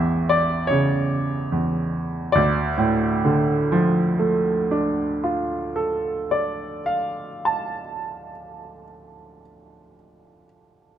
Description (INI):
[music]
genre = classical, romantic nocturne for solo piano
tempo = 36 BPM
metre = 4/4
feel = rubato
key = D minor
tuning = A4 = 441 Hz
[part]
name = bright baby grand piano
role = solo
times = 0.0-11.0 s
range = A1 to A5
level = -20 LUFS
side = right 1 dB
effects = none
[sound]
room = moderate recital hall reverb, RT60 1.6 s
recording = close, detailed microphones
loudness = -20 LUFS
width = side -10 dB against mid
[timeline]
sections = 0.0-2.4 A section; 2.4-9.0 B section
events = slowing down 0.0-2.4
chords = 0.0 A; 2.4 Dm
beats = 0.70 | 2.36 4.04 5.71 7.36